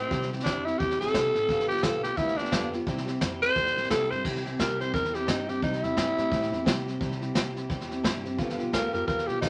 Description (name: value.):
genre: rockabilly.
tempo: 174 BPM.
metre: 4/4.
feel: swing 59% on 8ths.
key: C major.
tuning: A4 = 436 Hz.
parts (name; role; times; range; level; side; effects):
growling tenor saxophone; melody; 0.0-9.5 s; C4 to C5; -30 LUFS; equal; none.
picked steel-string acoustic guitar; accompaniment; 0.0-9.5 s; G2 to G4; -35 LUFS; equal; none.
upright bass; bass; 0.1-9.5 s; G1 to A2; -40 LUFS; equal; none.
vintage brush drum kit; drums; 0.1-9.5 s; crash cymbal, hi-hat, kick drum, snare drum; -33 LUFS; equal; none.
room: wet studio reverb, RT60 0.5 s.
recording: none.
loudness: -28 LUFS.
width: mono.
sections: 0.0-4.2 A section; 4.2-9.5 B section.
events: tenor saxophone solo 0.0-4.2.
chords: 0.0 C; 1.5 G7; 2.9 C; 8.4 G7.